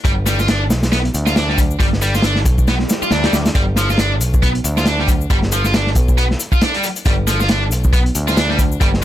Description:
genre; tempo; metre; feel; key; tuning
breakbeat, breaks; 137 BPM; 4/4; swing 58% on 16ths; unclear; A4 = 439 Hz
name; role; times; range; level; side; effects
heavy high-gain guitar; riff; 0.0-8.9 s; F3 to F4; -20 LUFS; right 1 dB; distortion, tube saturation, ping-pong delay
overdriven picked electric bass; bass; 0.0-9.0 s; G1 to D2; -18 LUFS; equal; tube saturation
crunchy breakbeat drum kit; drums; 0.0-9.0 s; hi-hat, kick drum, snare drum; -17 LUFS; equal; none
shaker; drums; 0.1-8.9 s; none; -27 LUFS; left 8 dB; none
swell; sound effects; 2.8-3.6 s; none; -25 LUFS; left 1 dB; none
room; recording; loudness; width
little or no reverb; none; -13 LUFS; side -12 dB against mid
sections
0.0-9.0 A section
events
kick drops out 2.7-3.6; swell 2.8-3.6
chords
0.0 G7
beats
| 0.05 0.49 0.93 1.36 | 1.80 2.24 2.68 3.12 | 3.55 3.99 4.43 4.87 | 5.30 5.74 6.18 6.62 | 7.06 7.49 7.93 8.37 | 8.81

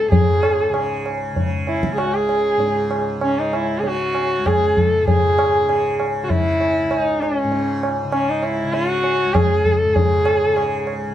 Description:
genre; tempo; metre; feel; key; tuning
indian classical, Hindustani; 98 BPM; 4/4; straight; C# raga darbari; A4 = 440 Hz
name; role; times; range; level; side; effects
dark sarangi; melody; 0.0-10.9 s; C#4 to A4; -18 LUFS; equal; none
tanpura; drone; 0.0-11.1 s; C#2 to C#3; -27 LUFS; equal; none
tabla; percussion; 0.1-11.1 s; none; -21 LUFS; left 1 dB; none
room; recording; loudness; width
light reverb; dark, warm production; -16 LUFS; side -11 dB against mid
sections
0.0-11.1 A section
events
none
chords
none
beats
| 0.12 0.74 1.36 1.98 | 2.60 3.22 3.84 4.46 | 5.07 5.69 6.30 6.92 | 7.53 8.14 8.76 9.37 | 9.97 10.58

